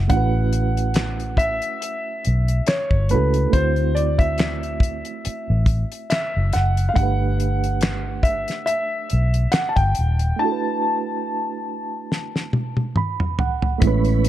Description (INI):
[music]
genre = R&B, neo-soul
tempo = 70 BPM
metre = 4/4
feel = swing 55% on 16ths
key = unclear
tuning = A4 = 441 Hz
[part]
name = reed electric piano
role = accompaniment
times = 0.0-14.3 s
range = G#3 to B5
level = -27 LUFS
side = right 10 dB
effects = fast tremolo
[part]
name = vintage muted fingered electric bass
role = bass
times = 0.0-14.3 s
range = D#1 to D2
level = -20 LUFS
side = equal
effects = none
[part]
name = warm concert grand piano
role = melody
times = 0.1-12.9 s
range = B4 to A5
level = -24 LUFS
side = left 1 dB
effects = tape echo
[part]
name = damped 70s drum kit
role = drums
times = 0.1-14.3 s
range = handclaps, hi-hat, kick drum, snare drum, toms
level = -21 LUFS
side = equal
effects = none
[part]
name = tonewheel organ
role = sustained chords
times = 13.8-14.3 s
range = E3 to B4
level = -30 LUFS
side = left 1 dB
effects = slow rotary speaker, chorus vibrato
[sound]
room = light reverb, studio reverb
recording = dark, warm production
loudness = -19 LUFS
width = side -13 dB against mid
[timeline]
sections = 0.0-13.8 A section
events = break 10.4-13.8; drum fill 12.1-13.8; reed electric piano fill 12.5-13.8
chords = 0.1 A69; 3.5 D9; 7.0 Gmaj7; 10.4 E9sus4